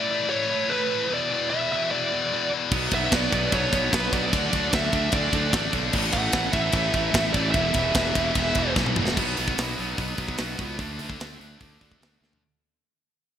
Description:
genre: heavy metal.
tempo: 149 BPM.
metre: 4/4.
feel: straight.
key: unclear.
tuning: A4 = 440 Hz.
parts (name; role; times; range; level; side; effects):
high-gain lead guitar; melody; 0.0-8.7 s; B4 to F#5; -27 LUFS; right 2 dB; distortion, digital delay.
scooped high-gain guitar; riff; 0.0-12.4 s; E2 to D4; -27 LUFS; left 7 dB; distortion.
dark symphonic string section; sustained chords; 2.7-9.2 s; E3 to F#5; -38 LUFS; right 2 dB; none.
high-gain distorted guitar; riff; 2.7-12.4 s; E2 to D4; -29 LUFS; right 11 dB; distortion.
fuzz fingered electric bass; bass; 2.7-12.4 s; E1 to D2; -30 LUFS; equal; overdrive.
tight metal drum kit; drums; 2.7-12.4 s; crash cymbal, hi-hat, kick drum, ride cymbal, snare drum, toms; -26 LUFS; equal; none.
room: moderate lush hall reverb, RT60 2.1 s.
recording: bright 1980s-style digital production.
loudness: -21 LUFS.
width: side -9 dB against mid.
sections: 0.0-9.2 A section; 9.2-12.4 B section.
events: drum fill 8.8-9.2, 12.2; fade-out 9.2-12.4.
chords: 0.0 A; 1.1 E5; 2.7 Bm; 4.3 D; 5.9 A; 7.5 Em; 9.2 B5; 10.8 D5.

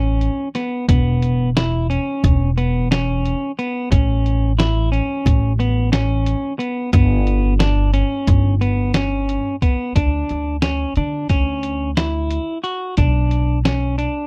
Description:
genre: progressive instrumental, band music in an uneven meter.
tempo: 178 BPM (eighths).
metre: 9/8.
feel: straight.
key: unclear.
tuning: A4 = 439 Hz.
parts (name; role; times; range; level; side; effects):
clean electric guitar; arpeggios; 0.0-14.3 s; B3 to F#4; -24 LUFS; equal; none.
upright bass; bass; 0.0-14.1 s; E1 to D3; -21 LUFS; equal; none.
lo-fi sampler-style drum kit; drums; 0.2-14.1 s; hi-hat, kick drum, snare drum; -20 LUFS; equal; none.
room: little or no reverb.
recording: dry, close 1970s-style studio recording.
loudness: -19 LUFS.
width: mono.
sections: 0.0-10.0 A section; 10.0-14.3 B section.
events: none.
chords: 0.0 A; 0.9 E5; 3.9 A; 6.9 G; 10.0 Dmaj7(no3); 13.0 Bmadd9.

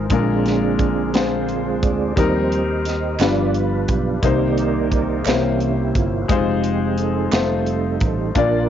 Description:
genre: slow gospel.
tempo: 58 BPM (dotted quarters).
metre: 6/8.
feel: straight.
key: unclear.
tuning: A4 = 440 Hz.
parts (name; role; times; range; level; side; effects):
warm baby grand piano; accompaniment; 0.0-8.7 s; G2 to D5; -21 LUFS; left 6 dB; cassette tape.
mellow tonewheel organ; sustained chords; 0.0-8.7 s; D3 to Eb5; -22 LUFS; right 8 dB; slow rotary speaker, chorus vibrato, cassette tape.
fretless electric bass; bass; 0.0-8.7 s; F1 to Eb2; -24 LUFS; right 1 dB; none.
crisp fusion drum kit; drums; 0.1-8.5 s; hi-hat, kick drum, snare drum; -22 LUFS; right 1 dB; cassette tape.
group handclap; percussion; 3.2-7.6 s; none; -31 LUFS; right 10 dB; none.
room: light reverb, studio reverb.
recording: home recording on cassette, nothing above 7.5 kHz.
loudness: -17 LUFS.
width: side -10 dB against mid.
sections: 0.0-8.7 A section.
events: tonewheel organ solo 0.0-8.7.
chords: 0.1 Bb7; 2.2 Eb6; 3.2 G7; 4.2 Cm7; 5.3 C7b9; 6.3 Fm7; 7.3 F7.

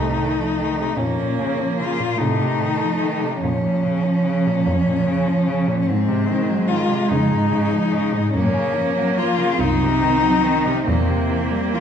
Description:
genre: classical, lyrical piece for cello ensemble.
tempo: 49 BPM (dotted quarters).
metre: 6/8.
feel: rubato.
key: Bb minor.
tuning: A4 = 440 Hz.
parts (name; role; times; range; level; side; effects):
rich cello; melody; 0.0-11.8 s; C4 to F4; -22 LUFS; left 5 dB; none.
rich cello; second line; 0.0-11.8 s; F3 to C4; -22 LUFS; right 5 dB; none.
rich cello; accompaniment; 0.0-11.8 s; F2 to G3; -24 LUFS; left 1 dB; none.
warm cello; bass; 0.0-11.8 s; C2 to Db3; -26 LUFS; right 2 dB; none.
room: wet recital hall reverb, RT60 1.8 s.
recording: heard from further back in the room.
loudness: -17 LUFS.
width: side -8 dB against mid.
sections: 0.0-11.8 A section.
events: none.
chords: 0.0 F7; 1.0 Bbm/F; 2.2 F7/A; 3.4 Bbm/F; 5.9 Ab7; 7.1 Db/F; 8.3 Gbmaj7; 9.6 Cdim; 10.9 C7/E.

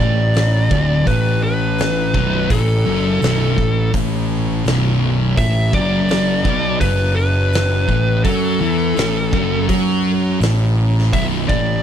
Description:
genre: stoner and doom metal.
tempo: 84 BPM.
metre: 4/4.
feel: straight.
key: B minor.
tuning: A4 = 443 Hz.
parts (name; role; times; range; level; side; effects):
fuzz lead guitar; melody; 0.0-11.8 s; A4 to E5; -22 LUFS; left 1 dB; distortion, tape echo.
thick fuzz guitar; riff; 0.0-11.8 s; B1 to F#3; -19 LUFS; left 6 dB; distortion.
thick fuzz guitar; riff; 0.0-11.8 s; B1 to F#3; -20 LUFS; right 8 dB; distortion.
fuzz fingered electric bass; bass; 0.0-11.8 s; B0 to F#2; -22 LUFS; equal; overdrive.
oversized low-tuned drum kit; drums; 0.3-11.7 s; hi-hat, kick drum, snare drum; -23 LUFS; equal; none.
room: small room ambience.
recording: none.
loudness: -14 LUFS.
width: side -9 dB against mid.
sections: 0.0-11.8 A section.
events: none.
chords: 0.0 Bm; 5.4 A5; 11.1 Bm.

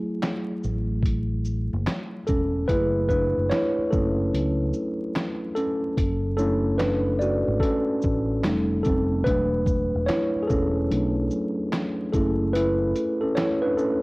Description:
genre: lo-fi hip hop.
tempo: 73 BPM.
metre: 4/4.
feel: swing 64% on 16ths.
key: unclear.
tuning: A4 = 443 Hz.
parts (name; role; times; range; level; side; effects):
mellow tine electric piano; accompaniment; 0.0-14.0 s; F#3 to D5; -23 LUFS; equal; medium stereo tremolo, low-pass filter, cassette tape.
lo-fi sampler-style drum kit; drums; 0.2-14.0 s; handclaps, hi-hat, kick drum, shaker, snare drum; -28 LUFS; equal; cassette tape.
fingered electric bass; bass; 0.6-12.9 s; E1 to C#2; -27 LUFS; equal; tube saturation.
room: little or no reverb.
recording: home recording on cassette, vinyl crackle.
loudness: -22 LUFS.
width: side -24 dB against mid.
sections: 0.0-2.7 A section; 2.7-14.0 B section.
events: tine electric piano solo 2.7-14.0.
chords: 0.0 F#m9; 2.7 Bm11/F#; 8.4 F9; 9.3 E9sus4; 12.1 F#m9.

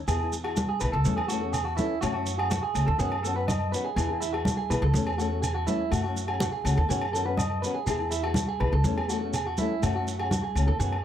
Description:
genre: highlife guitar band.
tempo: 123 BPM.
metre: 4/4.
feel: straight.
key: E major.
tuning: A4 = 440 Hz.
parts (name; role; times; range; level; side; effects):
upright bass; bass; 0.0-11.0 s; B1 to F#2; -29 LUFS; equal; none.
nylon-string guitar; accompaniment; 0.1-11.0 s; D#3 to A4; -33 LUFS; left 8 dB; none.
electric guitar at the edge of break-up; arpeggios; 0.1-11.0 s; E4 to D#5; -31 LUFS; right 6 dB; tape echo.
agogo bells; percussion; 0.1-11.0 s; none; -35 LUFS; left 4 dB; none.
congas; percussion; 0.1-10.9 s; none; -32 LUFS; equal; none.
shekere; percussion; 0.1-10.9 s; none; -35 LUFS; right 3 dB; none.
room: light reverb.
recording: none.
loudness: -24 LUFS.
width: side -10 dB against mid.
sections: 0.1-11.0 A section.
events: none.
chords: 0.1 E; 1.1 A/E; 2.0 F#m; 3.0 Badd9/F#; 4.0 E; 4.9 A/E; 5.9 F#m; 6.9 Badd9/F#; 7.9 E; 8.8 A/E; 9.8 F#m.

